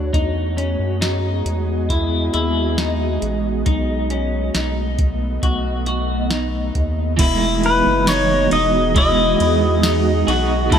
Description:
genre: dream pop.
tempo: 68 BPM.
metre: 4/4.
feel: straight.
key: E major.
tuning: A4 = 442 Hz.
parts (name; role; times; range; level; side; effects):
ethereal airy pad; sustained chords; 0.0-10.8 s; E3 to D#5; -23 LUFS; right 1 dB; ensemble chorus, built-in reverb.
semi-hollow electric guitar; arpeggios; 0.0-10.8 s; C#4 to F#4; -23 LUFS; left 3 dB; wide subtle chorus, tape echo.
round analog bass; bass; 0.0-10.8 s; E1 to F#2; -22 LUFS; equal; none.
soft vintage rhythm box; drums; 0.1-10.8 s; crash cymbal, hi-hat, kick drum, ride cymbal, snare drum, tambourine; -22 LUFS; equal; overdrive.
electric guitar at the edge of break-up; accompaniment; 7.2-10.8 s; D3 to G#4; -22 LUFS; right 7 dB; tremolo, wide subtle chorus.
pedal steel guitar; melody; 7.7-10.3 s; B4 to D#5; -18 LUFS; left 2 dB; tape echo.
worn celesta; texture; 8.1-10.8 s; A5 to C#6; -30 LUFS; left 1 dB; none.
room: moderate lush hall reverb, RT60 2.3 s.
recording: none.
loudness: -16 LUFS.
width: side -8 dB against mid.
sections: 0.0-7.2 A section; 7.2-10.8 B section.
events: none.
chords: 0.1 Emaj7; 3.7 B7; 7.2 Emaj7.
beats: | 0.13 1.02 1.90 2.78 | 3.66 4.55 5.43 6.31 | 7.19 8.08 8.96 9.84 | 10.72.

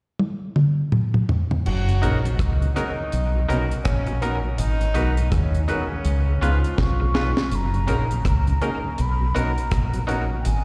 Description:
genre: lovers rock reggae.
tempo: 82 BPM.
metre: 4/4.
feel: swing 60% on 16ths.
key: F# major.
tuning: A4 = 441 Hz.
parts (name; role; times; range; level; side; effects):
deep reggae drum kit; drums; 0.2-10.6 s; crash cymbal, hi-hat, kick drum, rim click, snare drum, toms; -26 LUFS; equal; dub echo.
warm horn section; second line; 1.7-7.1 s; C#3 to F#4; -34 LUFS; equal; dub echo, slapback echo.
deep dub fingered electric bass; bass; 1.7-10.6 s; F#1 to D#2; -24 LUFS; equal; none.
mellow tonewheel organ; accompaniment; 1.9-10.4 s; F#2 to F#4; -36 LUFS; equal; slow rotary speaker, slapback echo.
clear grand piano; accompaniment; 2.0-10.4 s; A#3 to A#4; -34 LUFS; equal; slapback echo.
twangy electric guitar; stabs; 2.0-10.3 s; B3 to B4; -34 LUFS; equal; dub echo, slapback echo.
breathy mellow jazz flute; melody; 6.8-10.6 s; G5 to C#6; -32 LUFS; equal; tape echo, slapback echo.
room: small room ambience.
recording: live gig heard through the venue's PA, recital hall reverb.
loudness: -22 LUFS.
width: mono.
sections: 0.0-1.7 A section; 1.7-7.5 B section; 7.5-10.6 C section.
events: drum fill 0.2-1.7, 6.8-7.5.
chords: 0.0 N.C.; 1.7 F#6; 3.1 Bmaj7; 4.6 G#m7; 6.0 C#7; 7.5 F#6; 9.0 Bmaj7.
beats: 0.19 0.92 | 1.65 2.38 3.12 3.85 | 4.58 5.31 6.05 6.78 | 7.51 8.25 8.98 9.71 | 10.45.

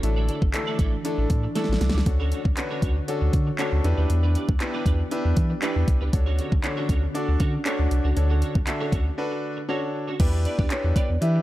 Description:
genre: dance-pop.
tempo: 118 BPM.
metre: 4/4.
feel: straight.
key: unclear.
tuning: A4 = 440 Hz.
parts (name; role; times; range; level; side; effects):
clear concert grand piano; accompaniment; 0.0-11.4 s; A3 to E5; -29 LUFS; left 1 dB; sidechain pumping.
glassy FM pad; sustained chords; 0.0-10.2 s; D3 to C#5; -34 LUFS; left 1 dB; ensemble chorus, built-in reverb, sidechain pumping.
twelve-string electric guitar; riff; 0.0-11.4 s; A3 to D5; -34 LUFS; right 5 dB; ensemble chorus.
warm sub bass; bass; 0.0-11.4 s; G1 to E3; -23 LUFS; equal; sidechain pumping.
pop drum kit; drums; 0.0-11.3 s; crash cymbal, handclaps, hi-hat, kick drum, snare drum; -24 LUFS; equal; overdrive.
marimba with soft mallets; melody; 10.5-11.4 s; C#5 to E5; -30 LUFS; left 1 dB; none.
room: digital ambience.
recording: dry, gritty hardware recording, transformer saturation.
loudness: -21 LUFS.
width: side -15 dB against mid.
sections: 0.0-10.2 A section; 10.2-11.4 B section.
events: drum fill 1.6-2.1; break 9.2-10.2.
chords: 0.0 Asus4; 2.1 Dmaj7; 3.8 Em7; 6.1 Dmaj7; 10.2 Em7.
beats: | 0.03 0.54 1.05 1.55 | 2.06 2.57 3.08 3.59 | 4.10 4.61 5.11 5.62 | 6.13 6.64 7.15 7.66 | 8.16 8.67 9.18 9.69 | 10.20 10.71 11.22.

